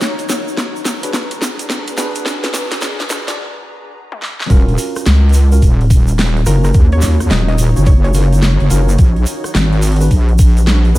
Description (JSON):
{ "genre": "glitch hop", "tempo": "107 BPM", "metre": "4/4", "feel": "swing 64% on 16ths", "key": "Eb minor", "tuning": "A4 = 440 Hz", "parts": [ { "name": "dubstep drum kit", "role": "drums", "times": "0.0-10.9 s", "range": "hi-hat, rim click, snare drum, toms", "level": "-20 LUFS", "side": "equal", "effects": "small room reverb" }, { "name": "tube shaker", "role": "percussion", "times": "0.0-11.0 s", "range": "none", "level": "-28 LUFS", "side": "right 4 dB", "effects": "none" }, { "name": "granular cloud pad", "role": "texture", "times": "0.0-11.0 s", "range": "D4 to Bb5", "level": "-27 LUFS", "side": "left 1 dB", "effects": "built-in reverb, sidechain pumping" }, { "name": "tine electric piano", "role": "stabs", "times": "1.0-11.0 s", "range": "Db4 to D5", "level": "-26 LUFS", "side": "equal", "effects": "wide subtle chorus, sidechain pumping, diffuse ambient delay" }, { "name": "wobble bass", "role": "bass", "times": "4.5-11.0 s", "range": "Eb1 to Eb2", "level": "-11 LUFS", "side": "equal", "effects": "chorus" }, { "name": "electronic kick drum", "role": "drums", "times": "4.5-10.5 s", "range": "none", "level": "-10 LUFS", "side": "equal", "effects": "small room reverb" }, { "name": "woody wave-folded pluck", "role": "melody", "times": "6.5-8.1 s", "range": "Bb4 to Eb5", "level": "-28 LUFS", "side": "right 1 dB", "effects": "chorus, diffuse ambient delay" } ], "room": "little or no reverb", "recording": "high-pass filter", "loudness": "-11 LUFS", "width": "side -17 dB against mid", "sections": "0.0-4.5 A section; 4.5-11.0 B section", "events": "build-up 0.0-4.5; drum fill 0.0-3.4, 4.1-4.5; break 3.4-4.5; drop 4.5-11.0", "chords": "0.0 Bb7b9b13; 4.5 Ebm7; 9.0 Bb7b9b13", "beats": "| 0.01 0.58 1.14 1.70 | 2.26 2.82 3.38 3.94 | 4.50 5.06 5.62 6.18 | 6.74 7.30 7.87 8.43 | 8.99 9.55 10.11 10.67" }